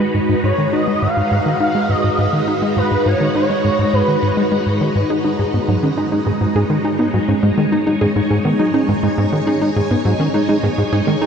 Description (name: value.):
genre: ambient, sequencer-driven space music.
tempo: 103 BPM.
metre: 4/4.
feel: straight.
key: G# minor.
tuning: A4 = 439 Hz.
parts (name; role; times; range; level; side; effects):
expressive portamento lead; melody; 0.0-4.8 s; B4 to E#5; -21 LUFS; equal; ensemble chorus, shimmer reverb, ping-pong delay.
phased string machine; sustained chords; 0.0-11.3 s; G#3 to A#5; -20 LUFS; equal; ensemble chorus, phaser, shimmer reverb.
tight sequencer bass; riff; 0.0-11.3 s; G#2 to D#4; -18 LUFS; equal; ping-pong delay.
wide unison pluck; arpeggios; 5.1-11.3 s; F#3 to G#4; -20 LUFS; moving between left 1 dB and right 6 dB; auto-pan, shimmer reverb, ping-pong delay.
room: wet huge ambient reverb, RT60 8.0 s.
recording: worn, warbling old tape, cassette tape, warbly pitch drift.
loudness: -14 LUFS.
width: side -7 dB against mid.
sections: 0.0-11.3 A section.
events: none.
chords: 0.0 G#m7.